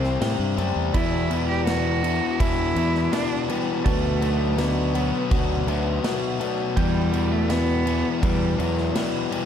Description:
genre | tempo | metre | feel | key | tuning
post-rock | 82 BPM | 4/4 | straight | E minor | A4 = 442 Hz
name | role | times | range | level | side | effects
clear cello | melody | 0.0-9.3 s | F#3 to G4 | -28 LUFS | right 4 dB | digital delay
pedal steel guitar | sustained chords | 0.0-9.5 s | C4 to B5 | -41 LUFS | right 8 dB | none
twelve-string electric guitar | arpeggios | 0.0-9.5 s | E2 to G4 | -34 LUFS | left 1 dB | none
vibraphone with soft mallets | arpeggios | 0.0-9.5 s | B4 to E5 | -33 LUFS | right 10 dB | digital delay
biting overdriven guitar | riff | 0.0-9.5 s | E2 to C4 | -25 LUFS | left 9 dB | none
growling fingered electric bass | bass | 0.0-8.9 s | C2 to A2 | -26 LUFS | right 1 dB | overdrive
big rock drum kit | drums | 0.0-9.5 s | crash cymbal, kick drum, snare drum | -28 LUFS | right 1 dB | none
room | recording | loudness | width
studio reverb | dark, warm production | -20 LUFS | side -8 dB against mid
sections
0.0-9.5 A section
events
none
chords
0.0 C6; 0.9 Em7; 3.9 Bm7/D; 6.8 Em7

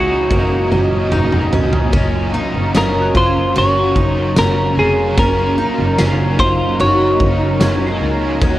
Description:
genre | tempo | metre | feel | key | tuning
dream pop | 74 BPM | 4/4 | straight | Gb lydian | A4 = 440 Hz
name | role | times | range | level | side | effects
semi-hollow electric guitar | melody | 0.0-8.0 s | Gb4 to Db5 | -18 LUFS | equal | tape echo
overdriven electric guitar | accompaniment | 0.0-8.6 s | Eb3 to Eb5 | -24 LUFS | right 2 dB | harmonic tremolo, analog chorus
shimmering ambient pad | sustained chords | 0.0-8.6 s | Bb2 to Eb5 | -20 LUFS | right 1 dB | chorus, built-in reverb
picked twelve-string acoustic guitar | arpeggios | 0.0-8.6 s | Bb3 to Gb4 | -22 LUFS | left 2 dB | wide subtle chorus, tape echo
clear double bass | bass | 0.0-8.6 s | F1 to Eb2 | -19 LUFS | equal | none
soft synth bell | texture | 0.0-8.6 s | Db6 to C7 | -34 LUFS | equal | none
huge arena drum kit | drums | 0.3-8.6 s | kick drum, ride cymbal, snare drum, tambourine, toms | -19 LUFS | equal | none
room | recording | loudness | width
moderate concert hall reverb, RT60 2.2 s | worn, warbling old tape, cassette tape, warbly pitch drift | -12 LUFS | side -15 dB against mid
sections
0.0-1.9 A section; 1.9-8.6 B section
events
drum fill 0.3-1.9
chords
0.3 Gb6

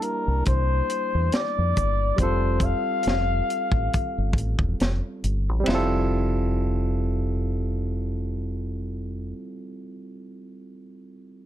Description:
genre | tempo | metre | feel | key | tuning
R&B, neo-soul | 69 BPM | 4/4 | swing 57% on 16ths | F major | A4 = 439 Hz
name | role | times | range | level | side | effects
trumpet with bucket mute | melody | 0.0-4.4 s | Bb4 to F5 | -26 LUFS | left 4 dB | none
barky tine electric piano | accompaniment | 0.0-11.5 s | G3 to A5 | -30 LUFS | right 2 dB | overdrive
tight funk drum kit | drums | 0.0-5.9 s | hi-hat, kick drum, ride cymbal, snare drum | -26 LUFS | equal | none
deep dub fingered electric bass | bass | 0.3-9.3 s | E1 to F2 | -25 LUFS | equal | none
room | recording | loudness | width
light reverb | dark, warm production | -22 LUFS | side -12 dB against mid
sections
0.0-5.7 A section; 5.7-9.1 B section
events
none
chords
0.0 C13; 2.2 F; 5.7 Fmaj7

